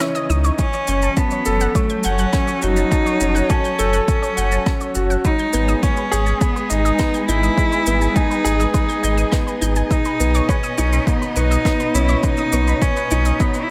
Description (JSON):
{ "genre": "piano and strings electronica", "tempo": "103 BPM", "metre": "4/4", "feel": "straight", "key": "unclear", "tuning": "A4 = 440 Hz", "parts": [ { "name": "dark studio string section", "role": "sustained chords", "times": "0.0-13.7 s", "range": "B2 to D#5", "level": "-29 LUFS", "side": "equal", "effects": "none" }, { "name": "analog pluck", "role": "arpeggios", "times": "0.0-13.7 s", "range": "B4 to G6", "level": "-33 LUFS", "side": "equal", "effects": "chorus, sidechain pumping, digital delay" }, { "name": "clear concert grand piano", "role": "riff", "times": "0.0-13.7 s", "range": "B3 to A5", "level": "-26 LUFS", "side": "equal", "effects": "none" }, { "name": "shaker and rim click", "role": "drums", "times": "0.0-13.7 s", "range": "none", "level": "-32 LUFS", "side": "equal", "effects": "none" }, { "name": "warm sub bass", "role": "bass", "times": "0.3-13.3 s", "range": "F#1 to C#2", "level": "-21 LUFS", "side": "equal", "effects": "sidechain pumping" }, { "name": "clear cello", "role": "melody", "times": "0.6-13.7 s", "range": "A3 to E4", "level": "-24 LUFS", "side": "equal", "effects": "none" }, { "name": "electronic kick drum", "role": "drums", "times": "0.6-13.5 s", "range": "none", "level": "-22 LUFS", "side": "equal", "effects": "overdrive" } ], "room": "light reverb, studio ambience", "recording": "none", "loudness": "-18 LUFS", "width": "mono", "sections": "0.0-13.7 A section", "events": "break 0.0-0.6", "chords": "0.0 C#madd9; 0.6 F#m; 5.2 G#m; 9.9 Badd9", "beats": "0.00 | 0.59 1.17 1.75 2.33 | 2.92 3.50 4.08 4.66 | 5.25 5.83 6.41 7.00 | 7.58 8.16 8.74 9.32 | 9.91 10.49 11.07 11.65 | 12.24 12.82 13.40" }